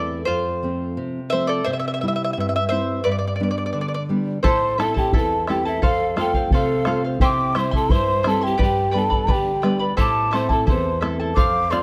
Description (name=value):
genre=andean folk, Andean ensemble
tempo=87 BPM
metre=2/4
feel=straight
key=A minor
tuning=A4 = 439 Hz
part: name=charango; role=accompaniment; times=0.0-11.8 s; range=E4 to C6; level=-27 LUFS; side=equal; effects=none
part: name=nylon-string guitar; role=accompaniment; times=0.0-11.8 s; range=E2 to F4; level=-27 LUFS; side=equal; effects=none
part: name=breathy pan flute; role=second line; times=4.4-11.8 s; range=E4 to A5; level=-28 LUFS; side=equal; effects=none
part: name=bombo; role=percussion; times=4.4-11.8 s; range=none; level=-25 LUFS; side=equal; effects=none
part: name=breathy mellow large quena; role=melody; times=4.5-11.8 s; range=E5 to D6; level=-26 LUFS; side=equal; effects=none
room=light reverb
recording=close, detailed microphones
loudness=-21 LUFS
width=mono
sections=0.0-4.4 A section; 4.4-11.8 B section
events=charango solo 0.0-4.4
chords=0.3 F; 1.7 C; 3.1 G; 4.4 Am; 5.8 F; 7.2 C; 8.6 G; 10.0 Am